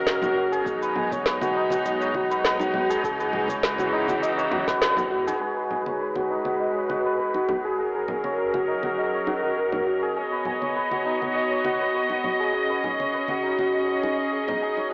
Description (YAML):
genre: organic downtempo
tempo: 101 BPM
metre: 4/4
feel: straight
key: unclear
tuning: A4 = 443 Hz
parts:
  - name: clear studio string section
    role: sustained chords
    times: 0.0-14.9 s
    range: C#3 to D#5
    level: -27 LUFS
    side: equal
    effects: sidechain pumping, low-pass filter, cassette tape
  - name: santur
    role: arpeggios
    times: 0.0-14.9 s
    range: D#4 to G#5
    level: -24 LUFS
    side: equal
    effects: low-pass filter, cassette tape, tape echo
  - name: warm sub bass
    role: bass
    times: 0.0-5.3 s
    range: F#1 to E2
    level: -41 LUFS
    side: equal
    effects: sidechain pumping
  - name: electronic snare drum and shaker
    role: drums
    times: 0.1-14.9 s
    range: none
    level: -27 LUFS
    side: equal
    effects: low-pass filter on perc, cassette tape, low-pass filter on snare
  - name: congas and bongos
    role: percussion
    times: 0.2-14.9 s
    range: none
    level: -36 LUFS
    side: equal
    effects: none
  - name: electronic kick drum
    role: drums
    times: 0.7-5.1 s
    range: none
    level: -39 LUFS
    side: equal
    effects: cassette tape
room: wet spring reverb, RT60 1.8 s, studio ambience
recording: home recording on cassette, AM radio sound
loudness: -22 LUFS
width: side -33 dB against mid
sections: 0.0-5.4 A section; 5.4-14.9 B section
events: band accent 4.8; filter sweep on string section 5.4-14.9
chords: 0.0 F#; 0.7 B6; 3.0 C#m; 5.4 G#m7; 7.8 F#; 10.2 B6; 12.5 C#5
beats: 0.07 | 0.66 1.25 1.85 2.44 | 3.04 3.63 4.22 4.82 | 5.41 6.01 6.60 7.20 | 7.79 8.38 8.98 9.57 | 10.17 10.76 11.35 11.95 | 12.54 13.14 13.73 14.32 | 14.92